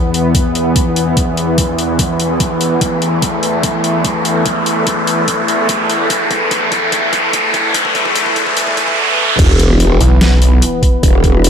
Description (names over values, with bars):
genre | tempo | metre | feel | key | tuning
heavy wobble dubstep | 146 BPM | 4/4 | half-time | unclear | A4 = 442 Hz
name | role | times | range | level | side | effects
supersaw pad | sustained chords | 0.0-11.5 s | E2 to B4 | -16 LUFS | equal | sidechain pumping, low-pass filter
riser and sub drop | sound effects | 0.0-11.0 s | none | -16 LUFS | equal | none
dubstep drum kit | drums | 0.1-11.5 s | crash cymbal, hi-hat, snare drum | -18 LUFS | left 2 dB | overdrive, studio reverb
electronic kick drum | drums | 0.3-11.3 s | none | -16 LUFS | equal | overdrive, studio reverb
growl bass | bass | 9.4-11.5 s | E1 | -11 LUFS | equal | chorus, overdrive
snarling distorted saw bass | bass | 10.0-10.6 s | B1 | -9 LUFS | equal | distortion, overdrive
room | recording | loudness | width
light reverb, digital ambience | dark, warm production, high-pass filter | -11 LUFS | side -7 dB against mid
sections
0.0-9.4 A section; 9.4-11.5 B section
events
build-up 0.0-9.4; riser 0.0-9.4; filter sweep on supersaw synth 0.0-9.4; filter sweep 0.0-9.4; drum fill 2.8-9.0; drop 9.4-11.5; impact 9.4-11.0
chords
0.0 E5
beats
0.35 0.76 | 1.17 1.58 1.99 2.40 | 2.81 3.22 3.63 4.05 | 4.46 4.87 5.28 5.69 | 6.10 6.51 6.92 7.33 | 7.75 8.16 8.57 8.98 | 9.39 9.80 10.21 10.62 | 11.03 11.44